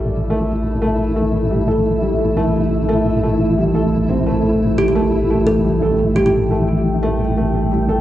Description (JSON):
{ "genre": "drum and bass", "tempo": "174 BPM", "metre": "4/4", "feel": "swing 58% on 16ths, half-time", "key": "unclear", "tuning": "A4 = 438 Hz", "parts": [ { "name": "deep dark ambient pad", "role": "sustained chords", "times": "0.1-8.0 s", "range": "E3 to G5", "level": "-20 LUFS", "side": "equal", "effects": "chorus, built-in reverb, cassette tape" }, { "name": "felt-muted upright piano", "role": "arpeggios", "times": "0.0-8.0 s", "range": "G3 to A4", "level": "-21 LUFS", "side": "equal", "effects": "vintage 12-bit sampler grit, low-pass filter, cassette tape, analog delay" }, { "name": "deep soft wobble bass", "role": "bass", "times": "0.0-8.0 s", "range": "A1", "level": "-20 LUFS", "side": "equal", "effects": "chorus" }, { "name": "flickering grainy texture", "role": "texture", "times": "0.0-8.0 s", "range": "E4", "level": "-24 LUFS", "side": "left 1 dB", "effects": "built-in reverb, cassette tape" }, { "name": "kalimba", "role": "melody", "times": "4.8-6.3 s", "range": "G4 to A4", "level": "-20 LUFS", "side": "equal", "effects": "vintage 12-bit sampler grit, cassette tape, analog delay" } ], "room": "moderate spring reverb, RT60 2.1 s", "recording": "home recording on cassette", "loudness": "-14 LUFS", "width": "side -13 dB against mid", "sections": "0.0-8.0 A section", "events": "none", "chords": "0.0 A5" }